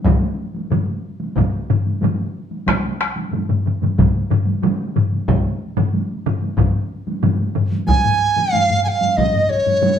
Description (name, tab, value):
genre	japanese traditional, taiko drum ensemble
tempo	92 BPM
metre	4/4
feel	straight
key	unclear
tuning	A4 = 440 Hz
part	taiko ensemble	percussion	0.1-10.0 s	none	-23 LUFS	right 2 dB	none
part	taiko ensemble	percussion	0.1-10.0 s	none	-21 LUFS	left 4 dB	none
part	taiko ensemble	percussion	0.1-7.7 s	none	-23 LUFS	right 4 dB	none
part	taiko ensemble	percussion	0.1-9.3 s	none	-20 LUFS	left 1 dB	none
part	mellow hollow dizi	melody	7.9-10.0 s	Db5 to Ab5	-16 LUFS	right 2 dB	none
room	wet large studio reverb, RT60 0.9 s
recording	band playing live in one room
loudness	-16 LUFS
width	side -8 dB against mid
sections	0.0-7.9 A section; 7.9-10.0 B section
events	none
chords	none